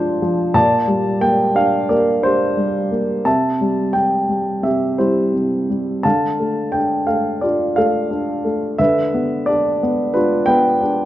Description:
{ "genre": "classical, lyrical solo piano", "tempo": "88 BPM", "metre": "4/4", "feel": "rubato", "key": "unclear", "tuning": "A4 = 440 Hz", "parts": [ { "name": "dark baby grand piano", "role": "solo", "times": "0.0-11.1 s", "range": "Bb2 to A5", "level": "-15 LUFS", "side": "equal", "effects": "none" } ], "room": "moderate recital hall reverb, RT60 1.6 s", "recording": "worn, warbling old tape, cassette tape, warbly pitch drift, nothing above 7.5 kHz", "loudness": "-15 LUFS", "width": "side -14 dB against mid", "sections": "0.0-11.1 A section", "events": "none", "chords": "0.0 Bbadd9; 0.6 Gm/Bb; 3.3 C; 6.0 Dm; 8.8 G7/D" }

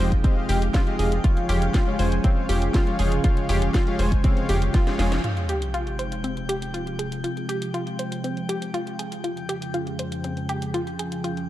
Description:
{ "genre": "progressive house", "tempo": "120 BPM", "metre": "4/4", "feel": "straight", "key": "F minor", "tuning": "A4 = 440 Hz", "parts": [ { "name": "lush unison pad", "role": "sustained chords", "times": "0.0-11.5 s", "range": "F2 to Ab4", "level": "-29 LUFS", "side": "equal", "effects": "chorus, sidechain pumping" }, { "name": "analog pluck", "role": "arpeggios", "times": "0.0-11.3 s", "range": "C4 to C5", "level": "-29 LUFS", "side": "equal", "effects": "chorus, cassette tape, sidechain pumping, tape echo" }, { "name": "soft supersaw", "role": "stabs", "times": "0.0-5.1 s", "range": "Ab3 to Ab5", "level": "-30 LUFS", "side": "left 3 dB", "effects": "sidechain pumping, tape echo" }, { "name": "tight sequencer bass", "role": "bass", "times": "0.0-5.2 s", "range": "F1", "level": "-23 LUFS", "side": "equal", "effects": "sidechain pumping" }, { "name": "drifting glass-harmonics texture", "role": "texture", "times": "0.0-11.5 s", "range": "G5 to G6", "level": "-39 LUFS", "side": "left 3 dB", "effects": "chorus, built-in reverb, sidechain pumping" }, { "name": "electronic kick drum", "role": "drums", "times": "0.1-4.8 s", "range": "none", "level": "-20 LUFS", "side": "equal", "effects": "none" }, { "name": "house drum kit", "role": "drums", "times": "0.1-11.5 s", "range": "hi-hat, snare drum", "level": "-34 LUFS", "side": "equal", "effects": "sidechain pumping on hats" }, { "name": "sub drop", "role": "sound effects", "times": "5.2-7.2 s", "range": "none", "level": "-31 LUFS", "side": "equal", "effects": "none" } ], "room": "light reverb", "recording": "dark, warm production", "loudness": "-22 LUFS", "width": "side -14 dB against mid", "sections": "0.0-5.2 A section; 5.2-11.5 B section", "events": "drum fill 4.7-5.2; band accent 5.1; impact 5.2-7.2; filter sweep on analog synth pad 5.2-11.5", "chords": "0.0 Fm9; 1.2 Db/F; 5.2 Fm9; 9.2 Db/F" }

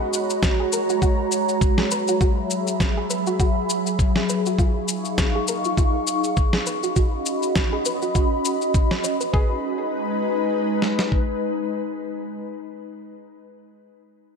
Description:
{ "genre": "sunset chillout", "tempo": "101 BPM", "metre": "4/4", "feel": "swing 56% on 16ths", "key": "G# minor", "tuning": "A4 = 442 Hz", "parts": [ { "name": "ethereal airy pad", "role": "sustained chords", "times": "0.0-12.5 s", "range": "F#3 to C#6", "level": "-23 LUFS", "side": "equal", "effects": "ensemble chorus, built-in reverb" }, { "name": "electronic shaker and snare drum", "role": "drums", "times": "0.1-9.3 s", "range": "none", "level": "-26 LUFS", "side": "left 2 dB", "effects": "none" }, { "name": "dusty soul sampler-style drum kit", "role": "drums", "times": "0.4-11.3 s", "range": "kick drum, snare drum", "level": "-20 LUFS", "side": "equal", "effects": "none" }, { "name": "soft round pluck", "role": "arpeggios", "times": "0.6-9.6 s", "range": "E#4 to C#5", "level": "-30 LUFS", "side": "right 2 dB", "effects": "chorus, digital delay" } ], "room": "moderate concert hall reverb, RT60 2.4 s", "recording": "none", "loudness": "-20 LUFS", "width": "side -6 dB against mid", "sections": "0.0-9.3 A section; 9.3-11.7 B section", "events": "filter sweep on ambient pad 0.0-9.3; filter sweep on synth arpeggio sound 0.0-9.3", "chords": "0.0 G#9sus4; 1.9 F#9sus4; 4.6 D#9sus4; 6.7 C#9sus4; 9.3 G#m" }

